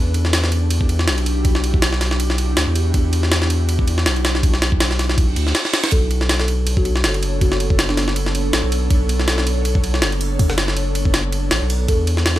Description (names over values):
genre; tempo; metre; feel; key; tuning
drum and bass, jungle; 161 BPM; 4/4; swing 55% on 16ths; B minor; A4 = 440 Hz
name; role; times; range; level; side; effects
ethereal airy pad; sustained chords; 0.0-12.4 s; G3 to C#5; -26 LUFS; equal; ensemble chorus, built-in reverb
saturated sub bass; bass; 0.0-12.4 s; F#1 to E2; -19 LUFS; equal; none
jungle sampler-style drum kit; drums; 0.1-12.4 s; kick drum, ride cymbal, snare drum; -19 LUFS; equal; studio reverb
reverse cymbal; sound effects; 5.3-5.9 s; none; -27 LUFS; right 6 dB; none
folk marimba with soft mallets; melody; 5.9-8.3, 11.9-12.4 s; D4 to A4; -26 LUFS; left 1 dB; vintage 12-bit sampler grit, dub echo
room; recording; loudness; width
little or no reverb; none; -16 LUFS; side -14 dB against mid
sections
0.0-12.4 A section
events
reverse cymbal 5.3-5.9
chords
0.0 Em9; 5.9 Bm9; 11.9 Em9